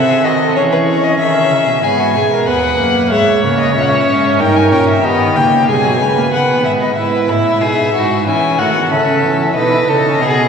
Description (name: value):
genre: classical, baroque-style fugue for string quartet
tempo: 94 BPM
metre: 4/4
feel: straight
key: E major from 7.0 s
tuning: A4 = 441 Hz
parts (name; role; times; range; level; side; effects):
- dark violin; melody; 0.0-10.5 s; B4 to G#5; -15 LUFS; left 4 dB; none
- warm viola; accompaniment; 0.0-10.5 s; F#3 to E4; -17 LUFS; right 2 dB; none
- dark cello; bass; 0.0-10.5 s; D#2 to E3; -19 LUFS; right 3 dB; none
- warm violin; second line; 0.1-10.5 s; E4 to C#5; -17 LUFS; equal; none
room: wet cathedral reverb, RT60 4.8 s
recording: recorded in a church or concert hall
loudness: -11 LUFS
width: side -6 dB against mid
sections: 0.0-7.0 A section; 7.0-10.5 B section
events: none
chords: 0.0 G# (rootless); 0.6 C#m/E; 1.8 G#m; 3.1 A#m7b5/G#; 4.4 D#7/G; 5.7 G#m/B; 7.0 E/G#; 8.3 F#m7; 9.6 B7